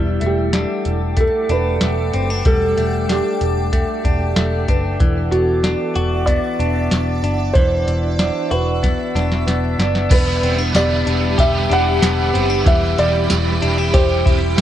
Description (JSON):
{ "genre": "dream pop", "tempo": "94 BPM", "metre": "4/4", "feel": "straight", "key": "E minor", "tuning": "A4 = 444 Hz", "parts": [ { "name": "granular cloud pad", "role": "sustained chords", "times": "0.0-14.6 s", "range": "G4 to E6", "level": "-24 LUFS", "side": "equal", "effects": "built-in reverb" }, { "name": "direct-recorded clean electric guitar", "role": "arpeggios", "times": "0.0-14.6 s", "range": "E3 to G4", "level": "-22 LUFS", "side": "left 2 dB", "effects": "wide subtle chorus, digital delay" }, { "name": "vintage muted picked electric bass", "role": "bass", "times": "0.0-14.6 s", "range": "E1 to F#1", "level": "-20 LUFS", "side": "equal", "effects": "none" }, { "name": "soft vintage rhythm box", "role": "drums", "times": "0.2-14.6 s", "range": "crash cymbal, hi-hat, kick drum, snare drum, tambourine", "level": "-18 LUFS", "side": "equal", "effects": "none" }, { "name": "buzzing marimba with medium hard mallets", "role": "texture", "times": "0.2-14.6 s", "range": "G4 to B5", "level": "-35 LUFS", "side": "left 1 dB", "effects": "none" }, { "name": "felt-muted upright piano", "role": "melody", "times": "0.3-14.6 s", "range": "F#4 to F#5", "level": "-22 LUFS", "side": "right 2 dB", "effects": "digital delay" }, { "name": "crunchy overdriven guitar", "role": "accompaniment", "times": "10.1-14.6 s", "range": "E2 to B4", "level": "-23 LUFS", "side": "right 4 dB", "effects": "tremolo, ensemble chorus" } ], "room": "light reverb, digital ambience", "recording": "dark, warm production", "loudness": "-15 LUFS", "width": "side -11 dB against mid", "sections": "0.0-10.1 A section; 10.1-14.6 B section", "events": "drum fill 8.8-10.1", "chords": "0.0 Em11; 5.0 Cmaj9#11/E (rootless); 10.1 Em7" }